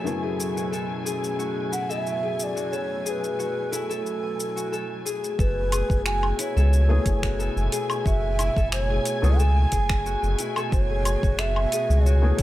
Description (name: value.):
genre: organic downtempo.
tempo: 90 BPM.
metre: 4/4.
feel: straight.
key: F# minor.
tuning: A4 = 440 Hz.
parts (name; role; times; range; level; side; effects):
felt-muted upright piano; accompaniment; 0.0-12.4 s; F#2 to G#5; -34 LUFS; left 3 dB; sidechain pumping, tape echo.
muted studio string section; sustained chords; 0.0-12.4 s; B2 to G#5; -32 LUFS; right 1 dB; sidechain pumping.
concert harp; arpeggios; 0.0-12.4 s; E4 to G#5; -31 LUFS; left 4 dB; low-pass filter, tape echo.
deep house drum kit; drums; 0.1-12.4 s; finger snaps, hi-hat, shaker, woodblock; -31 LUFS; left 1 dB; overdrive.
breathy hollow bass bansuri; melody; 1.7-12.4 s; A4 to G#5; -29 LUFS; right 2 dB; digital delay.
round analog bass; bass; 5.4-12.4 s; F#1 to C#2; -22 LUFS; equal; sidechain pumping.
electronic kick drum; drums; 5.4-12.4 s; none; -25 LUFS; equal; overdrive.
room: light reverb, small room reverb.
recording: none.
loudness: -22 LUFS.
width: side -15 dB against mid.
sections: 0.0-5.4 A section; 5.4-12.4 B section.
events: none.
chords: 0.0 F#m11.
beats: | 0.06 0.72 1.39 2.06 | 2.72 3.39 4.05 4.72 | 5.39 6.05 6.72 7.39 | 8.05 8.72 9.39 10.05 | 10.72 11.39 12.05.